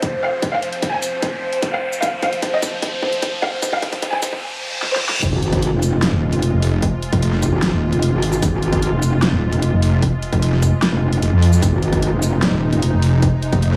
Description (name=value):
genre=heavy wobble dubstep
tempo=150 BPM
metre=4/4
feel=half-time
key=F minor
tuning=A4 = 440 Hz
part: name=evolving wavetable pad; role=sustained chords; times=0.0-13.8 s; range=C3 to C5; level=-28 LUFS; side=equal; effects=ensemble chorus, built-in reverb, vintage 12-bit sampler grit, sidechain pumping
part: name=dubstep drum kit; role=drums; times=0.0-13.8 s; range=crash cymbal, hi-hat, shaker, snare drum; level=-26 LUFS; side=equal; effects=none
part: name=electronic kick drum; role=drums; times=0.0-13.6 s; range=none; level=-26 LUFS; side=equal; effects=distortion
part: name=riser, reverse cymbal and impact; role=sound effects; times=0.0-6.8 s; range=none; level=-29 LUFS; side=equal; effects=none
part: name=warm studio violin section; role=melody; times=0.2-5.1 s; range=C5 to Ab5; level=-26 LUFS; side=equal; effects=dub echo
part: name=wobble bass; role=bass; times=5.2-13.8 s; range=Eb1 to F2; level=-18 LUFS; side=equal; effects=chorus, overdrive
part: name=metallic wobble bass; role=bass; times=5.3-12.9 s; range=F1 to Ab1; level=-20 LUFS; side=equal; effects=chorus, overdrive
room=light reverb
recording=high-pass filter, small room ambience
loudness=-18 LUFS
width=mono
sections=0.0-5.2 A section; 5.2-13.8 B section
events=build-up 0.0-5.2; drum fill 0.0-4.4, 4.8-5.2; riser 0.0-5.2; filter sweep on violin section 0.0-5.2; filter sweep 0.0-5.2; reverse cymbal 4.4-5.2; drop 5.2-13.8; impact 5.2-6.8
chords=0.0 F5; 5.2 Fm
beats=0.02 | 0.42 0.82 1.22 1.62 | 2.02 2.42 2.82 3.22 | 3.62 4.02 4.42 4.82 | 5.22 5.62 6.02 6.42 | 6.82 7.22 7.62 8.02 | 8.42 8.82 9.22 9.62 | 10.02 10.42 10.82 11.22 | 11.62 12.02 12.42 12.82 | 13.22 13.62